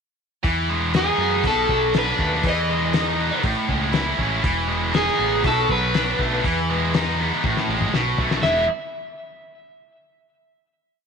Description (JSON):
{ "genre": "indie rock", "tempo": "120 BPM", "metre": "4/4", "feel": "straight", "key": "E major", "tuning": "A4 = 438 Hz", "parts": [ { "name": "scooped high-gain guitar", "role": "riff", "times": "0.4-8.6 s", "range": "A2 to E4", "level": "-22 LUFS", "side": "equal", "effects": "distortion" }, { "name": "growling picked electric bass", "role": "bass", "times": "0.4-8.7 s", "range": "E1 to F#2", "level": "-27 LUFS", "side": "right 1 dB", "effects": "overdrive" }, { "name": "cloth-damped thuddy drum kit", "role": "drums", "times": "0.4-8.6 s", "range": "hi-hat, kick drum, snare drum, toms", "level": "-25 LUFS", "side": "left 3 dB", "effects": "none" }, { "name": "overdriven semi-hollow guitar", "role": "melody", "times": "1.0-8.7 s", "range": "G#4 to E5", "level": "-23 LUFS", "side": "equal", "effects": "none" } ], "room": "light reverb", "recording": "1960s-style stereo", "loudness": "-18 LUFS", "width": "side -6 dB against mid", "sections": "0.4-8.4 verse; 8.4-10.4 final chord", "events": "drum fill 7.4-8.4", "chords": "0.4 Emaj7; 1.4 Bm7; 2.4 Emaj7; 3.4 Amaj7; 4.4 Emaj7; 5.4 Bm7; 6.4 Emaj7; 7.4 Asus2; 7.9 Asus2/B; 8.4 E" }